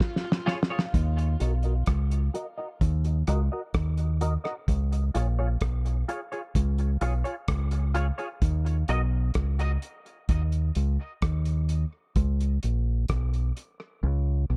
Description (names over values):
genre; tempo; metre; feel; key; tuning
dub reggae; 64 BPM; 4/4; straight; Eb minor; A4 = 439 Hz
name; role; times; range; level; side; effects
cloth-damped thuddy drum kit; drums; 0.0-13.8 s; hi-hat, kick drum, rim click, snare drum; -30 LUFS; equal; none
semi-hollow electric guitar; accompaniment; 0.5-9.0 s; F4 to Eb5; -37 LUFS; equal; ensemble chorus, low-pass filter, tape echo
deep dub fingered electric bass; bass; 0.9-14.6 s; Bb1 to Eb2; -27 LUFS; equal; none
room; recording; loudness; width
little or no reverb; echo-heavy mix; -27 LUFS; mono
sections
0.9-14.6 A section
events
break 0.0-0.9; drum fill 0.0-0.9; filter sweep on clean electric guitar 0.9-14.6; drums muted 14.0-14.6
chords
0.0 Db; 0.9 Ebm; 4.7 Db; 8.4 N.C.; 12.2 Bbm